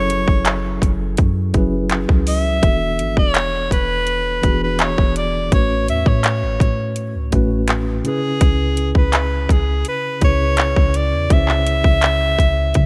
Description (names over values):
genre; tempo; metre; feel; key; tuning
contemporary R&B; 83 BPM; 4/4; straight; unclear; A4 = 439 Hz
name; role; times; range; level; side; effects
breathy alto saxophone; melody; 0.0-12.9 s; G#4 to E5; -23 LUFS; equal; delay
mellow tine electric piano; accompaniment; 0.0-12.9 s; A2 to G#5; -26 LUFS; equal; none
soft 808-style bass; bass; 0.0-12.9 s; E1 to C#3; -23 LUFS; equal; none
trap drum kit; drums; 0.1-12.9 s; handclaps, hi-hat, kick drum; -19 LUFS; equal; vintage 12-bit sampler grit
room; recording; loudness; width
light reverb; bright 1980s-style digital production; -17 LUFS; mono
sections
0.0-12.9 A section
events
none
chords
0.0 F#m9; 2.6 E9sus4; 5.5 A6; 8.1 C#m7